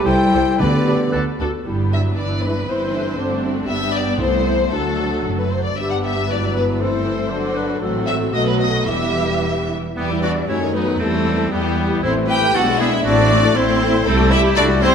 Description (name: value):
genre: quick classical-period movement for symphony orchestra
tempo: 116 BPM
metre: 2/4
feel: rubato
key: G major, E minor from 7.8 s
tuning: A4 = 440 Hz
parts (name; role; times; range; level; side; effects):
- clear oboe; second line; 0.0-1.2, 10.0-14.9 s; B3 to C5; -25 LUFS; right 1 dB; none
- mellow silver concert flute; second line; 0.0-14.9 s; G4 to G5; -25 LUFS; left 2 dB; none
- warm clarinet; second line; 0.0-9.7 s; B3 to C5; -28 LUFS; left 1 dB; none
- mellow French horn section; sustained chords; 0.0-14.9 s; F#3 to F#4; -24 LUFS; left 4 dB; none
- warm chamber cello section; bass; 0.0-14.9 s; C2 to G4; -26 LUFS; right 2 dB; none
- rich chamber violin section; melody; 0.1-14.9 s; G3 to F#5; -24 LUFS; left 2 dB; none
- rich chamber violin section; second line; 0.1-14.9 s; B3 to G5; -26 LUFS; left 1 dB; none
- dark studio viola section; accompaniment; 0.1-14.9 s; D3 to A4; -24 LUFS; equal; none
- warm studio double bass section; bass; 0.1-14.9 s; E1 to F#2; -23 LUFS; right 3 dB; none
- timpani; percussion; 0.6-1.1 s; D3; -23 LUFS; equal; none
room: wet scoring stage reverb, RT60 1.8 s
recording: none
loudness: -16 LUFS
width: side -7 dB against mid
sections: 0.0-1.7 A section; 1.7-10.0 B section; 10.0-14.9 C section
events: none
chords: 0.1 Am7/C; 0.6 G/D; 1.1 D; 1.7 G; 2.2 E7/G; 2.7 Am/G; 3.2 D7/G; 3.7 G; 4.2 Am/C; 4.7 D; 5.8 G; 6.3 E7/G; 6.8 Am/G; 7.3 D7/G; 7.8 F#dim/A; 8.3 B7; 8.9 Em; 10.5 D#dim/F#; 11.0 Em; 12.0 Am; 12.5 G#dim/B; 13.1 Am; 14.1 Am7/C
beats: 0.06 | 0.60 1.13 | 1.66 2.17 | 2.68 3.19 | 3.69 4.20 | 4.72 5.25 | 5.78 6.30 | 6.81 7.31 | 7.82 8.34 | 8.88 9.43 | 9.97 10.49 | 11.00 11.51 | 12.03 12.54 | 13.06 13.56 | 14.06 14.57